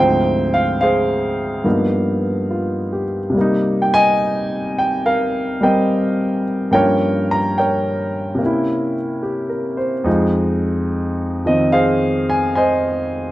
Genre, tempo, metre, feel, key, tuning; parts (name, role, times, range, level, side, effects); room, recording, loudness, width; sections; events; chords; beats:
solo jazz; 72 BPM; 4/4; swing 68% on 8ths, rubato; F minor; A4 = 438 Hz
warm grand piano; solo; 0.0-13.3 s; D2 to Bb5; -16 LUFS; equal
moderate club reverb, RT60 0.8 s; -16 LUFS; side -15 dB against mid
0.0-13.3 A section
0.0 Dm7b5; 1.7 G7alt; 3.4 Cm7; 6.7 Gm7b5; 8.4 C7b9; 10.1 Fm7
0.81 1.66 2.50 | 3.36 4.20 5.04 5.89 | 6.73 7.57 8.41 9.23 | 10.06 10.90 11.73 12.56